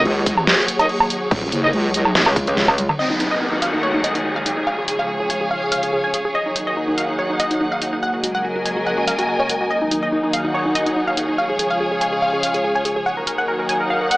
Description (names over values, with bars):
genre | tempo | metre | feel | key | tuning
heavy wobble dubstep | 143 BPM | 4/4 | half-time | Eb minor | A4 = 440 Hz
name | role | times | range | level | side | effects
lush unison pad | sustained chords | 0.0-14.2 s | Db3 to Bb4 | -28 LUFS | equal | chorus, phaser, sidechain pumping
bright brass ensemble | stabs | 0.0-1.7 s | Eb4 to Eb5 | -21 LUFS | equal | digital delay
metallic wobble bass | bass | 0.0-2.9 s | Eb1 to Db2 | -19 LUFS | equal | chorus, overdrive
warm studio string section | texture | 0.0-14.2 s | Gb3 to Ab5 | -23 LUFS | equal | sidechain pumping
wobble bass | bass | 0.1-2.1 s | Eb1 to Db2 | -20 LUFS | equal | chorus, overdrive
dubstep drum kit | drums | 0.1-14.2 s | crash cymbal, hi-hat, snare drum, toms, woodblock | -20 LUFS | equal | overdrive
electronic kick drum | drums | 0.3-2.8 s | none | -22 LUFS | equal | overdrive
wide unison pluck | melody | 3.0-14.2 s | Eb4 to Ab5 | -21 LUFS | equal | digital delay
downlifter | sound effects | 3.0-6.3 s | none | -25 LUFS | equal | none
room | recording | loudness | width
moderate digital room reverb, RT60 1.0 s, digital ambience | AM radio sound | -17 LUFS | side -20 dB against mid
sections
0.0-3.0 A section; 3.0-14.2 B section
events
drop 0.0-3.0; drum fill 2.8; filter sweep on analog synth pad 3.0-14.2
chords
0.0 Ebm; 4.7 Db; 6.3 Ebm; 8.0 Gbadd9; 9.7 Ebm; 11.4 Db; 13.1 Ebm